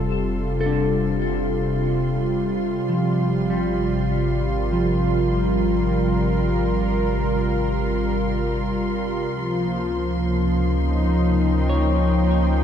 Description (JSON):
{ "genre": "ambient", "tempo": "74 BPM", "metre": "4/4", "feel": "straight", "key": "unclear", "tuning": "A4 = 440 Hz", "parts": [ { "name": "warm analog pad", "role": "sustained chords", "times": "0.0-12.6 s", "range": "C3 to G5", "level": "-22 LUFS", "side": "equal", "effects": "chorus" }, { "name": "clean electric guitar", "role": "arpeggios", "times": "0.0-12.6 s", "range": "F3 to A5", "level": "-26 LUFS", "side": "left 1 dB", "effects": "ping-pong delay" }, { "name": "warm sub bass", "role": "bass", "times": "0.0-12.6 s", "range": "F1 to Db2", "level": "-25 LUFS", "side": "equal", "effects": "none" }, { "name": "muted symphonic violin section", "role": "texture", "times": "0.0-12.6 s", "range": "C6", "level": "-36 LUFS", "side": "left 1 dB", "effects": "none" }, { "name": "analog drone", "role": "drone", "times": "9.7-12.6 s", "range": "F3 to Db4", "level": "-30 LUFS", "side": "equal", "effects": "chorus" } ], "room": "wet lush hall reverb, RT60 2.9 s", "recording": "dark, warm production", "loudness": "-19 LUFS", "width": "side -8 dB against mid", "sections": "0.0-12.6 A section", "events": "fade-in on violin section 0.0-12.6", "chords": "0.0 Fadd9; 2.8 Ab6; 9.3 Dbadd9", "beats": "0.39 1.20 2.01 | 2.82 3.63 4.45 5.26 | 6.07 6.88 7.69 8.50 | 9.31 10.12 10.93 11.74 | 12.55" }